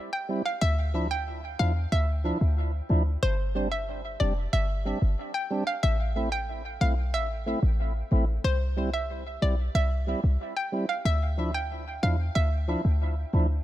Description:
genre	dancehall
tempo	92 BPM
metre	4/4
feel	straight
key	D dorian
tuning	A4 = 441 Hz
part	hollow square pluck	melody	0.1-12.8 s	C5 to G5	-32 LUFS	equal	chorus, dub echo
part	tonewheel organ	accompaniment	0.3-13.5 s	F3 to E4	-33 LUFS	right 1 dB	slow rotary speaker, dub echo
part	short 808-style bass	bass	0.6-13.6 s	F1 to E2	-26 LUFS	equal	none
room	little or no reverb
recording	echo-heavy mix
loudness	-25 LUFS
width	side -14 dB against mid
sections	0.0-13.6 A section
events	none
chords	0.0 C; 0.6 Dmadd9; 3.2 Gsus4; 5.8 Am; 8.4 C; 11.1 Dmadd9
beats	| 0.62 1.27 1.92 2.57 | 3.23 3.88 4.53 5.18 | 5.83 6.49 7.14 7.79 | 8.44 9.10 9.75 10.40 | 11.05 11.70 12.36 13.01

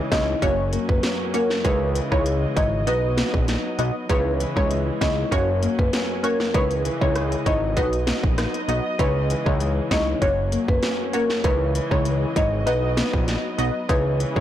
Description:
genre	dancehall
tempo	98 BPM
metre	4/4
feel	straight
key	C# dorian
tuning	A4 = 440 Hz
part	punchy chord stab	accompaniment	0.0-14.4 s	G#3 to D#5	-28 LUFS	equal	chorus, phaser
part	dark studio string section	sustained chords	0.0-14.4 s	C#3 to D#5	-32 LUFS	right 2 dB	sidechain pumping
part	nylon-string guitar	arpeggios	0.0-14.4 s	F#2 to D#4	-30 LUFS	left 6 dB	none
part	marimba with medium mallets	melody	0.1-14.4 s	A#4 to D#5	-26 LUFS	equal	digital delay
part	fat analog bass	bass	0.1-14.4 s	F#1 to C#2	-25 LUFS	equal	none
part	island pop drum kit	drums	0.1-14.4 s	hi-hat, kick drum, rim click, snare drum	-25 LUFS	equal	soft clipping on snare
room	light reverb, digital ambience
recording	blown-out, overdriven recording, overdrive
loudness	-20 LUFS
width	side -11 dB against mid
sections	0.0-14.4 A section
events	none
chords	0.4 F#; 1.6 C#madd9; 2.9 B; 4.1 C#madd9; 5.3 F#; 6.5 C#madd9; 7.8 B; 9.0 C#madd9; 10.2 F#; 11.4 C#madd9; 12.7 B; 13.9 C#madd9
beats	0.42 1.03 | 1.65 2.26 2.87 3.48 | 4.09 4.71 5.32 5.93 | 6.54 7.16 7.77 8.38 | 8.99 9.61 10.22 10.83 | 11.44 12.05 12.67 13.28 | 13.89

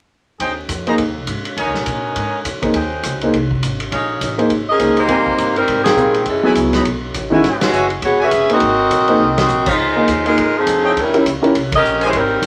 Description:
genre	jazz, big band swing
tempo	205 BPM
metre	4/4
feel	swing 60% on 8ths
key	Ab major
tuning	A4 = 440 Hz
part	clear trumpet section	stabs	0.4-12.1 s	Eb4 to Cb6	-23 LUFS	equal	none
part	upright bass	bass	0.4-12.5 s	E1 to Bb2	-28 LUFS	equal	none
part	vintage drum kit	drums	0.4-12.5 s	crash cymbal, hi-hat, kick drum, ride cymbal, snare drum	-26 LUFS	equal	none
part	clear concert grand piano	accompaniment	0.9-11.5 s	D#3 to Eb5	-19 LUFS	equal	none
part	warm saxophone section	melody	4.7-12.4 s	Eb3 to E5	-17 LUFS	equal	none
room	wet studio reverb, RT60 0.5 s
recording	vinyl crackle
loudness	-16 LUFS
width	mono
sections	0.4-5.1 A section; 5.1-12.5 B section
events	band accent 5.8, 7.6, 9.3, 11.7; drum fill 9.2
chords	0.4 Abmaj7/Eb; 1.6 Eb7sus4; 2.8 Abmaj7; 3.9 Eb9sus4; 5.1 Abmaj9; 6.3 Gbm11; 6.9 B9; 7.4 E69; 8.6 Ab9; 9.8 Dbmaj9; 11.0 Eb7b9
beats	| 0.41 0.70 0.99 1.29 | 1.58 1.87 2.17 2.46 | 2.75 3.04 3.34 3.63 | 3.92 4.22 4.51 4.80 | 5.10 5.39 5.68 5.98 | 6.27 6.56 6.86 7.15 | 7.44 7.74 8.03 8.32 | 8.62 8.91 9.20 9.50 | 9.79 10.08 10.38 10.67 | 10.96 11.25 11.55 11.84 | 12.13 12.43

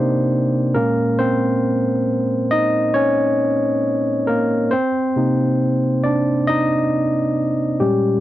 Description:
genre	R&B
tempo	68 BPM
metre	4/4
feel	swing 62% on 16ths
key	unclear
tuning	A4 = 439 Hz
part	barky tine electric piano	solo	0.0-8.2 s	Bb2 to Eb5	-16 LUFS	equal	none
room	light reverb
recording	dry, close 1970s-style studio recording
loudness	-16 LUFS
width	side -14 dB against mid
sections	0.0-8.2 A section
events	tine electric piano solo 0.0-8.2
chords	0.0 Cm9; 0.7 Bbm9; 4.7 Cm9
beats	0.31 | 1.19 2.07 2.96 3.84 | 4.72 5.60 6.49 7.37

